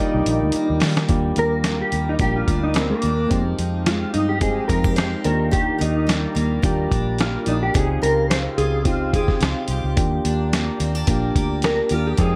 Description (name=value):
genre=indie pop, bedroom pop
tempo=108 BPM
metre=4/4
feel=swing 55% on 16ths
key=Eb major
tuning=A4 = 438 Hz
part: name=mellow electric guitar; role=melody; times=0.0-12.4 s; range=Bb3 to C5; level=-25 LUFS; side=equal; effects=ensemble chorus
part: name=picked steel-string acoustic guitar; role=accompaniment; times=0.0-12.4 s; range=Db3 to G4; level=-31 LUFS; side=equal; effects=lush chorus, warbly pitch drift
part: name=soft electric-piano-like synth keys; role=accompaniment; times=0.0-12.4 s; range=Ab3 to D5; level=-29 LUFS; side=equal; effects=chorus, cassette tape
part: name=warbly tape-like pad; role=sustained chords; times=0.0-12.4 s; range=G4 to D6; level=-36 LUFS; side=equal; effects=chorus, built-in reverb
part: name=vintage muted fingered electric bass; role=bass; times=0.1-12.4 s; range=Bb1 to Eb3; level=-26 LUFS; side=equal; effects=none
part: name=dusty soul sampler-style drum kit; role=drums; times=0.3-12.3 s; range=hi-hat, kick drum, snare drum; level=-25 LUFS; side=equal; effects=none
room=light reverb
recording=none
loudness=-20 LUFS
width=mono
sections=0.0-1.1 A section; 1.1-12.4 B section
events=drum fill 0.0-1.1; clean electric guitar solo 1.1-12.4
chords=0.0 Ebmaj7; 3.3 Fm9; 5.3 Ebmaj7; 7.7 Dbmaj9#11; 10.0 Ebmaj7